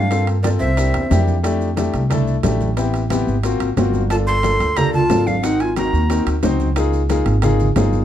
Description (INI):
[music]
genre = Afro-Cuban jazz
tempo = 180 BPM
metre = 4/4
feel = straight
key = F major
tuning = A4 = 440 Hz
[part]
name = breathy bright jazz flute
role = melody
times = 0.0-1.2, 4.1-6.2 s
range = D5 to C6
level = -22 LUFS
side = left 1 dB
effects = none
[part]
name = breathy mellow tenor recorder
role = second line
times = 0.0-1.2, 4.1-6.2 s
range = C4 to Bb4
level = -23 LUFS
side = right 2 dB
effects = none
[part]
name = upright bass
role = bass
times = 0.0-8.0 s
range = G1 to G2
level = -19 LUFS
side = right 1 dB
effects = none
[part]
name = warm concert grand piano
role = accompaniment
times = 0.1-8.0 s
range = A3 to C5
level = -21 LUFS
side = left 4 dB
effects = none
[part]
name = bongos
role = percussion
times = 0.1-8.0 s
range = none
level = -28 LUFS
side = left 7 dB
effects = none
[part]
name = congas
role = percussion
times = 0.1-8.0 s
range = none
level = -25 LUFS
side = right 2 dB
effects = none
[part]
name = maracas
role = percussion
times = 0.1-8.0 s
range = none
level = -37 LUFS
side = right 5 dB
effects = none
[part]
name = timbales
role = percussion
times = 0.1-7.9 s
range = none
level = -28 LUFS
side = right 5 dB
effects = none
[sound]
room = light reverb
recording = dark, warm production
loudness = -15 LUFS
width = side -11 dB against mid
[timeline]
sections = 0.0-8.0 A section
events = none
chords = 0.1 Gm11; 0.8 C7; 1.4 Fmaj13; 2.8 Am9; 3.4 Ab13; 4.1 Gm9; 5.4 Ab9; 6.8 Db69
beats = | 0.11 0.44 0.78 1.11 | 1.44 1.78 2.11 2.44 | 2.77 3.11 3.44 3.77 | 4.11 4.44 4.77 5.10 | 5.44 5.77 6.10 6.43 | 6.77 7.10 7.43 7.76